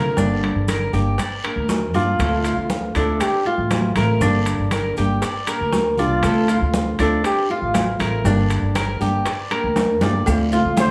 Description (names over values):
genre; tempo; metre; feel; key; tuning
latin, Cuban son and guajira; 119 BPM; 4/4; straight; D minor; A4 = 440 Hz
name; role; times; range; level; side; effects
nylon-string guitar; accompaniment; 0.0-10.9 s; D3 to G4; -28 LUFS; equal; none
Cuban tres; arpeggios; 0.0-10.9 s; D4 to D5; -26 LUFS; equal; none
upright bass; bass; 0.0-10.9 s; G1 to D3; -24 LUFS; equal; none
bongos and cowbell; percussion; 0.2-10.9 s; none; -34 LUFS; equal; none
congas; percussion; 0.2-10.9 s; none; -30 LUFS; equal; none
guiro; percussion; 0.2-10.9 s; none; -42 LUFS; equal; none
maracas; percussion; 0.2-10.9 s; none; -41 LUFS; equal; none
timbales and agogo bells; percussion; 0.4-10.9 s; none; -31 LUFS; equal; none
trumpet with bucket mute; melody; 2.0-10.9 s; F4 to C5; -25 LUFS; equal; none
room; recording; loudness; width
light reverb; studio reverb; -20 LUFS; mono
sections
0.0-10.3 A section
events
drum fill 9.8-10.3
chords
0.2 Gm; 2.2 Dm7; 4.2 Gm; 6.2 Dm7; 8.3 Gm; 10.3 Dm7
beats
| 0.18 0.68 1.19 1.69 | 2.20 2.70 3.21 3.71 | 4.22 4.72 5.23 5.73 | 6.24 6.74 7.25 7.75 | 8.26 8.76 9.26 9.77 | 10.27 10.78